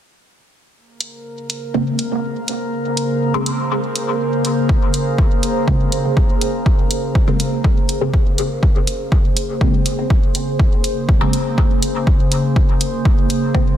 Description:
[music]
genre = dub techno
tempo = 122 BPM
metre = 4/4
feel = straight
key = Bb minor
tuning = A4 = 438 Hz
[part]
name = warbly tape-like pad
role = sustained chords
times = 1.6-13.8 s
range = Db3 to C5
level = -22 LUFS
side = right 1 dB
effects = chorus, built-in reverb, phaser, sidechain pumping
[part]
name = drifting glass-harmonics texture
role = texture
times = 1.2-8.6 s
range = Bb3 to Bb4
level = -26 LUFS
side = left 1 dB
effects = chorus, built-in reverb, sidechain pumping
[part]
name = electronic hi-hat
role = drums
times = 1.0-13.4 s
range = none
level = -23 LUFS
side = equal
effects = overdrive, low-pass filter on hats, studio reverb
[part]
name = filtered dub chord stab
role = stabs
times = 1.7-13.8 s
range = Db3 to C4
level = -23 LUFS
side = equal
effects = phaser, sidechain pumping, dub echo
[part]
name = electronic kick drum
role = drums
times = 4.7-13.6 s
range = none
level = -15 LUFS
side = equal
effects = overdrive, studio reverb
[sound]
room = light reverb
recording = dense, heavily limited modern master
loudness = -15 LUFS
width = side -11 dB against mid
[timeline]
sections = 0.8-8.6 A section; 8.6-13.8 B section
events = none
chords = 0.8 Bbm9

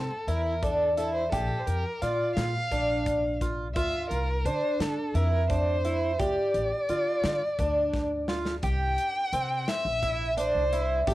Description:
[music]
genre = progressive instrumental, band music in an uneven meter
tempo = 172 BPM (eighths)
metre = 7/8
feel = straight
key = unclear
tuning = A4 = 440 Hz
[part]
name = warm violin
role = melody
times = 0.0-11.1 s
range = A4 to G5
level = -30 LUFS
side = equal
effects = cassette tape
[part]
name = fingerpicked twelve-string acoustic guitar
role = arpeggios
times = 0.0-11.1 s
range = C4 to G4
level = -29 LUFS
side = right 1 dB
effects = cassette tape
[part]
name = upright bass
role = bass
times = 0.0-11.1 s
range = A1 to D3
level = -31 LUFS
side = equal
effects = none
[part]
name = modern studio drum kit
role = drums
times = 0.3-11.1 s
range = hi-hat, kick drum, snare drum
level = -35 LUFS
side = left 1 dB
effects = cassette tape
[sound]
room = wet studio reverb, RT60 0.5 s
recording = home recording on cassette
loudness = -25 LUFS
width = side -16 dB against mid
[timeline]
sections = 0.0-8.6 A section; 8.6-11.1 B section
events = drum fill 7.9-8.6; violin solo 8.6-11.1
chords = 0.0 C7; 1.3 Bb; 3.8 Dm; 8.6 C7

